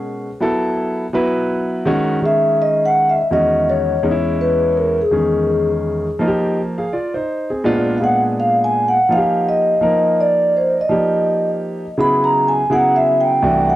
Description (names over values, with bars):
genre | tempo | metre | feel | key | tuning
hip hop | 83 BPM | 4/4 | swing 60% on 16ths | unclear | A4 = 440 Hz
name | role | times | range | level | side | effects
warm concert grand piano | accompaniment | 0.0-13.7 s | C2 to F5 | -18 LUFS | equal | none
vibraphone with soft mallets | melody | 2.3-13.8 s | G#4 to B5 | -15 LUFS | equal | cassette tape, tape echo
room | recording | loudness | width
moderate spring reverb, RT60 1.0 s, small room reverb | home recording on cassette | -14 LUFS | side -15 dB against mid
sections
0.0-13.8 A section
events
vibraphone solo 0.0-13.8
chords
0.4 F#m7; 1.9 Emaj13/D#; 3.3 Emaj7; 6.2 Fm11; 7.7 A#7b9; 9.1 D#add9; 12.0 C#m7